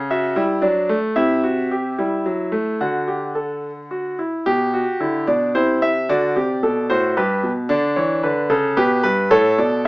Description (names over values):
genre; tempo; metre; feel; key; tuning
classical, baroque-style 3-part fugue for grand piano; 111 BPM; 3/4; straight; G major; A4 = 438 Hz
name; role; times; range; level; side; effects
warm concert grand piano; solo; 0.0-9.9 s; G2 to F#5; -17 LUFS; equal; none
room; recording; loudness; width
moderate studio reverb, RT60 0.8 s; small speaker sound; -17 LUFS; side -23 dB against mid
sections
0.0-4.5 A section; 4.5-9.9 B section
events
none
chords
0.0 A7/C# (rootless); 0.6 D/F#; 1.2 Am7/C; 2.8 D; 4.5 G/B; 5.6 C; 6.1 D; 7.2 G; 7.7 D5; 8.8 G/B; 9.3 A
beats
0.09 0.63 | 1.17 1.71 2.25 | 2.80 3.36 3.92 | 4.47 5.02 5.56 | 6.10 6.64 7.17 | 7.71 8.25 8.78 | 9.32 9.86